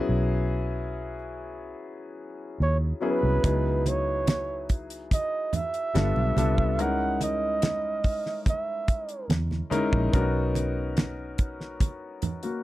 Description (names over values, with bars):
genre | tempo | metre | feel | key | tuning
lush 1970s-style soul | 72 BPM | 4/4 | straight | unclear | A4 = 441 Hz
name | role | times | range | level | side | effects
warm concert grand piano | accompaniment | 0.0-12.6 s | F#3 to A#4 | -30 LUFS | left 4 dB | none
vintage muted fingered electric bass | bass | 0.1-11.8 s | G1 to E2 | -28 LUFS | equal | none
breathy flugelhorn | melody | 2.6-9.3 s | B4 to F#5 | -28 LUFS | right 3 dB | none
damped 70s drum kit | drums | 3.4-12.6 s | hi-hat, kick drum, snare drum | -25 LUFS | equal | none
congas | percussion | 3.4-12.4 s | none | -32 LUFS | right 4 dB | none
room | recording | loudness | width
light reverb | dry, close 1970s-style studio recording | -24 LUFS | side -16 dB against mid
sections
0.0-12.6 A section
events
none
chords
0.0 E6/B; 3.4 C#m11; 6.0 G9; 6.8 F#13 (rootless); 10.1 Bmaj9